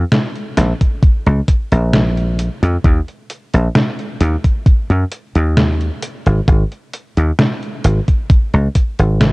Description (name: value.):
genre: vaporwave.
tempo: 66 BPM.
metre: 4/4.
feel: straight.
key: Bb minor.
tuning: A4 = 442 Hz.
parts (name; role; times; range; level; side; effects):
dry thumbed slap bass; bass; 0.0-9.3 s; Ab1 to Gb2; -13 LUFS; equal; none.
detuned 8-bit digital drum machine; drums; 0.1-9.3 s; hi-hat, snare drum; -17 LUFS; equal; vintage 12-bit sampler grit.
electronic kick drum; drums; 0.8-8.9 s; none; -12 LUFS; equal; vintage 12-bit sampler grit.
room: little or no reverb.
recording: dark, warm production, cassette tape.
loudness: -13 LUFS.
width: side -26 dB against mid.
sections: 0.0-9.3 A section.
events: none.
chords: none.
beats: 0.12 1.03 1.94 | 2.85 3.75 4.66 5.57 | 6.48 7.39 8.30 9.21.